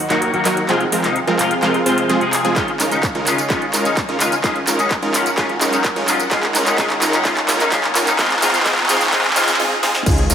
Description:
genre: EDM, festival progressive house.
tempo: 128 BPM.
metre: 4/4.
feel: straight.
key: unclear.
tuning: A4 = 440 Hz.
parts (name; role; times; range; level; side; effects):
lush unison pad; sustained chords; 0.0-10.3 s; Db3 to Gb5; -26 LUFS; equal; chorus, phaser, sidechain pumping.
clean electric guitar; accompaniment; 0.1-9.5 s; C3 to Ab4; -21 LUFS; left 2 dB; ensemble chorus, sidechain pumping, dub echo.
supersaw stab; riff; 0.1-10.3 s; F3 to C5; -19 LUFS; right 1 dB; sidechain pumping, low-pass filter, dub echo.
big-room dance drum kit; drums; 0.1-10.3 s; crash cymbal, handclaps, hi-hat, snare drum, tambourine; -19 LUFS; right 1 dB; high-pass filter on snare, studio reverb, high-pass filter on hats, high-pass filter on perc, high-pass filter on cymbals.
electronic kick drum; drums; 2.6-10.2 s; none; -23 LUFS; equal; studio reverb.
riser and impact; sound effects; 3.9-10.3 s; none; -30 LUFS; equal; none.
wide detuned saw bass; bass; 10.1-10.3 s; Db2; -18 LUFS; equal; chorus, sidechain pumping.
room: wet lush hall reverb, RT60 2.2 s.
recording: high-pass filter.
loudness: -14 LUFS.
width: side -8 dB against mid.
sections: 0.0-10.1 A section.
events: build-up 0.0-10.1; drum fill 0.0-9.6, 9.8; filter sweep on supersaw synth 0.0-10.1; break 9.6-10.1; impact 10.1.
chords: 0.0 Ebm; 0.7 Fm; 2.6 Dbadd9; 4.4 Ebm; 8.2 Fm.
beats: 0.22 | 0.69 1.16 1.63 2.10 | 2.56 3.03 3.50 3.97 | 4.44 4.91 5.38 5.84 | 6.31 6.78 7.25 7.72 | 8.19 8.66 9.13 9.60 | 10.06.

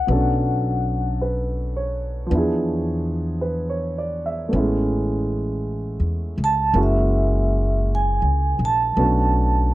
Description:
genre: jazz ballad.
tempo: 54 BPM.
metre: 4/4.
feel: swing 67% on 8ths.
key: A major.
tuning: A4 = 440 Hz.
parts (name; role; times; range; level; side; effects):
vibraphone with medium mallets; melody; 0.0-9.7 s; E5 to A5; -22 LUFS; right 2 dB; none.
warm upright piano; accompaniment; 0.0-9.7 s; F3 to E5; -24 LUFS; right 1 dB; none.
upright bass; bass; 0.0-9.7 s; F#1 to E2; -22 LUFS; equal; none.
room: little or no reverb.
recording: dry, close 1970s-style studio recording.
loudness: -19 LUFS.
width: side -16 dB against mid.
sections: 0.0-9.7 A section.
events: vibraphone solo 0.0-9.7.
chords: 0.1 Bm7; 2.3 E7b9; 4.5 Amaj7; 6.7 F#7; 9.0 Bm7.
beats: | 0.08 1.19 2.31 3.42 | 4.53 5.64 6.75 7.86 | 8.97.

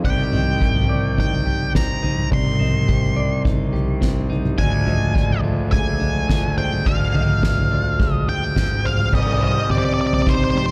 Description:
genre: post-rock.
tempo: 106 BPM.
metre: 4/4.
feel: straight.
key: C minor.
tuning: A4 = 440 Hz.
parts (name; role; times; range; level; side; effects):
pedal steel guitar; sustained chords; 0.0-10.7 s; Eb3 to G4; -37 LUFS; equal; none.
clean electric guitar; arpeggios; 0.0-10.7 s; C3 to Eb5; -31 LUFS; equal; analog delay.
felt-muted upright piano; arpeggios; 0.0-10.5 s; C5 to Eb5; -37 LUFS; equal; analog delay.
fuzz picked electric bass; bass; 0.0-10.6 s; C2 to C3; -26 LUFS; equal; overdrive.
soft-mallet drum kit; drums; 0.0-10.7 s; crash cymbal, kick drum, snare drum, toms; -22 LUFS; equal; none.
octave-fuzz lead guitar; melody; 0.1-10.7 s; C5 to C6; -27 LUFS; equal; distortion, analog delay.
room: small room ambience.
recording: dark, warm production.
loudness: -19 LUFS.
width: mono.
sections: 0.0-9.1 A section; 9.1-10.7 B section.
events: none.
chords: 0.0 Cmadd9; 4.6 Ddim; 9.1 Cmadd9.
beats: | 0.04 0.61 1.18 1.75 | 2.32 2.88 3.45 4.02 | 4.59 5.16 5.73 6.29 | 6.86 7.43 8.00 8.57 | 9.13 9.70 10.27.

